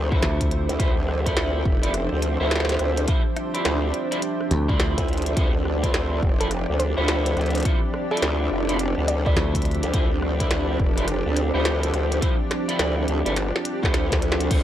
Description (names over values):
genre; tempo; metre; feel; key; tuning
glitch hop; 105 BPM; 4/4; swing 64% on 16ths; D minor; A4 = 440 Hz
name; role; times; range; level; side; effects
woody wave-folded pluck; melody; 0.0-0.1, 6.4-9.3 s; A4 to D5; -32 LUFS; equal; none
warm analog pad; sustained chords; 0.0-14.6 s; F3 to E5; -32 LUFS; left 1 dB; chorus, vintage 12-bit sampler grit, sidechain pumping
growl bass; bass; 0.0-14.6 s; F1 to D2; -24 LUFS; equal; chorus, tube saturation
granular cloud pad; texture; 0.0-14.6 s; D4 to C5; -30 LUFS; right 3 dB; built-in reverb, sidechain pumping
clean electric guitar; stabs; 0.1-14.6 s; E4 to D5; -29 LUFS; equal; analog chorus, sidechain pumping, tape echo
electronic kick drum; drums; 0.1-14.6 s; none; -23 LUFS; equal; none
dry thumbed slap bass; bass; 0.2-0.7, 4.5-4.9, 9.4-9.8 s; D2; -23 LUFS; equal; none
glitchy drum kit; drums; 0.2-14.6 s; crash cymbal, hi-hat, rim click, snare drum; -28 LUFS; equal; none
room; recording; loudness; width
digital ambience; dry, gritty hardware recording, cassette tape; -20 LUFS; side -11 dB against mid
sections
0.0-14.6 A section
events
drum fill 13.4-14.5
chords
0.0 Dm9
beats
0.23 | 0.80 1.37 1.94 2.51 | 3.08 3.65 4.22 4.80 | 5.37 5.94 6.51 7.08 | 7.65 8.22 8.80 9.37 | 9.94 10.51 11.08 11.65 | 12.22 12.80 13.37 13.94 | 14.51